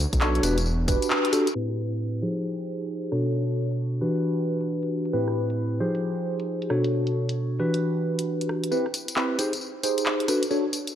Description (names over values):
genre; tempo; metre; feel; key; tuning
UK garage, two-step garage; 134 BPM; 4/4; swing 64% on 16ths; unclear; A4 = 440 Hz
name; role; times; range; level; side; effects
dark detuned saw bass; bass; 0.0-1.0 s; E1 to B1; -24 LUFS; equal; sidechain pumping
electronic kick drum; drums; 0.1-1.0 s; none; -25 LUFS; equal; none
garage drum kit; drums; 0.1-10.9 s; handclaps, hi-hat, rim click, tambourine; -29 LUFS; equal; high-pass filter on hats, low-pass filter on hats, high-pass filter on snare, low-pass filter on snare, high-pass filter on perc, low-pass filter on perc
tine electric piano; stabs; 0.2-10.6 s; A2 to C#5; -24 LUFS; equal; phaser, low-pass filter, analog delay
room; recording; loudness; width
moderate lush hall reverb, RT60 2.0 s; dry, gritty hardware recording, transformer saturation, low-pass filter; -23 LUFS; side -10 dB against mid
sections
0.0-1.6 A section; 1.6-8.7 B section; 8.7-11.0 C section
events
band accent 1.1; filter sweep on drum 1.6-8.7; filter sweep 1.6-8.7; build-up 8.7-11.0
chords
0.4 Em7; 1.6 Am7; 2.2 Fm7; 3.1 Bm7; 4.0 Em7; 5.1 Am7; 5.8 Fm7; 6.7 Bm7; 7.6 Em7; 8.7 Cmaj7; 9.4 G#maj7/D#; 10.3 Bm7